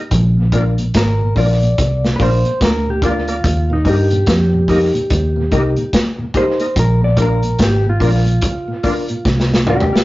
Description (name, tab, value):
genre	roots reggae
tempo	72 BPM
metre	4/4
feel	swing 61% on 16ths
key	unclear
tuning	A4 = 438 Hz
part	vintage muted fingered electric bass	bass	0.1-10.0 s	Ab1 to G2	-15 LUFS	equal	none
part	crunchy breakbeat drum kit	drums	0.1-10.0 s	hi-hat, kick drum, snare drum, toms	-18 LUFS	equal	none
part	tonewheel organ	accompaniment	0.4-10.0 s	Eb2 to Eb4	-23 LUFS	equal	chorus vibrato, slow rotary speaker
part	dark upright piano	stabs	0.5-9.9 s	D4 to Bb4	-21 LUFS	left 4 dB	none
part	mellow electric guitar	melody	1.0-10.0 s	Eb4 to D5	-20 LUFS	right 1 dB	none
room	moderate studio reverb, RT60 0.5 s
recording	rough rehearsal-room recording, tube saturation, nothing above 7.4 kHz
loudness	-13 LUFS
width	side -18 dB against mid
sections	0.0-10.0 A section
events	clean electric guitar solo 0.0-10.0; drum fill 9.3-10.0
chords	0.1 Bb; 3.4 Eb; 6.8 Bb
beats	| 0.12 0.95 1.78 2.61 | 3.44 4.28 5.11 5.94 | 6.77 7.60 8.43 9.26